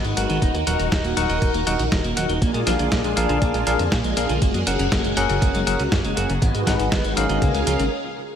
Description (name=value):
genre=italo disco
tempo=120 BPM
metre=4/4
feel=straight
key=Eb minor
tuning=A4 = 440 Hz
part: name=string machine, full ensemble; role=sustained chords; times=0.0-7.9 s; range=Ab3 to F5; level=-25 LUFS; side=equal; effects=phaser, ensemble chorus
part: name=clean electric guitar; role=arpeggios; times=0.0-7.8 s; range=Db3 to Eb4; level=-28 LUFS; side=right 2 dB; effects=lush chorus, tape echo
part: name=fat analog bass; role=bass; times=0.0-7.9 s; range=Eb1 to Bb2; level=-25 LUFS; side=equal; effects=none
part: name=dusty soul sampler-style drum kit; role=drums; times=0.0-7.9 s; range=hi-hat, snare drum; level=-27 LUFS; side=equal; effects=none
part: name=bell-like tine electric piano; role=stabs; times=0.2-7.8 s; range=Db4 to Gb5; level=-25 LUFS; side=left 3 dB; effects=medium stereo tremolo, tape echo
part: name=electronic kick drum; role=drums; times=0.4-7.5 s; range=none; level=-23 LUFS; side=equal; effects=none
room=light reverb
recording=none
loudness=-18 LUFS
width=side -8 dB against mid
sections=0.0-8.4 A section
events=stop 7.9-8.4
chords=0.4 Ebm; 2.4 Bb7; 4.4 Gbadd9; 6.4 Abm7; 7.4 Db6